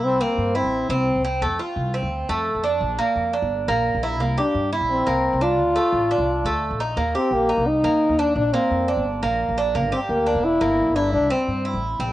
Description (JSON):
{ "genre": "latin, Cuban son and guajira", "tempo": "173 BPM", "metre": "4/4", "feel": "straight", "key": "unclear", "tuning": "A4 = 439 Hz", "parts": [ { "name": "clear French horn", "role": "melody", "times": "0.0-1.2, 4.4-11.8 s", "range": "Bb3 to F4", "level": "-21 LUFS", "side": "left 1 dB", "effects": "cassette tape" }, { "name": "Cuban tres", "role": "arpeggios", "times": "0.0-12.1 s", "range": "A3 to G4", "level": "-23 LUFS", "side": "right 2 dB", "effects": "cassette tape" }, { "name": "upright bass", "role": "bass", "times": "0.0-12.1 s", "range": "E1 to G2", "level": "-27 LUFS", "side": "equal", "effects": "none" } ], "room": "moderate spring reverb, RT60 2.3 s", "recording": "home recording on cassette, nothing above 10.3 kHz", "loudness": "-19 LUFS", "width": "side -14 dB against mid", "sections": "0.0-12.1 A section", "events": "none", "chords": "0.0 C; 1.4 F; 2.8 Bb; 4.2 C7; 5.6 Dm; 7.0 Eb; 8.4 Bbadd9; 9.7 Gm; 11.1 C", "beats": "| 0.03 0.38 0.73 1.08 | 1.42 1.77 2.12 2.46 | 2.81 3.16 3.51 3.85 | 4.20 4.55 4.89 5.24 | 5.59 5.94 6.28 6.63 | 6.98 7.32 7.67 8.02 | 8.36 8.71 9.05 9.40 | 9.75 10.09 10.44 10.79 | 11.13 11.48 11.82" }